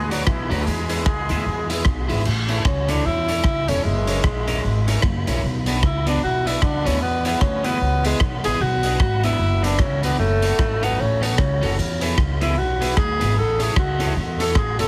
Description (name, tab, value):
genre	ska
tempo	151 BPM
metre	4/4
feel	swing 60% on 8ths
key	A major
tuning	A4 = 445 Hz
part	warm horn section	melody	0.0-1.9 s	E3 to A4	-32 LUFS	equal	tape echo
part	upright bass	bass	0.0-14.9 s	E1 to E2	-25 LUFS	equal	none
part	electric guitar at the edge of break-up	accompaniment	0.1-14.9 s	B3 to E5	-30 LUFS	equal	phaser, tape echo
part	raw garage drum kit	drums	0.1-14.9 s	crash cymbal, hi-hat, kick drum, rim click	-26 LUFS	equal	none
part	warm tenor saxophone	melody	2.7-14.9 s	G#3 to A4	-25 LUFS	equal	tape echo
room	light reverb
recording	heavily compressed radio sound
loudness	-21 LUFS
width	mono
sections	0.0-2.3 A section; 2.3-14.9 B section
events	tenor saxophone solo 2.3-14.9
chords	0.0 Bm; 0.7 E; 2.3 A; 3.8 F#7; 5.4 Bm; 7.0 E; 8.6 Bm; 10.2 F#m; 11.8 E; 13.4 A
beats	0.27 | 0.67 1.07 1.46 1.86 | 2.26 2.65 3.05 3.45 | 3.84 4.24 4.64 5.03 | 5.43 5.83 6.22 6.62 | 7.02 7.42 7.81 8.21 | 8.61 9.01 9.40 9.80 | 10.20 10.59 10.99 11.39 | 11.78 12.18 12.57 12.97 | 13.37 13.76 14.16 14.55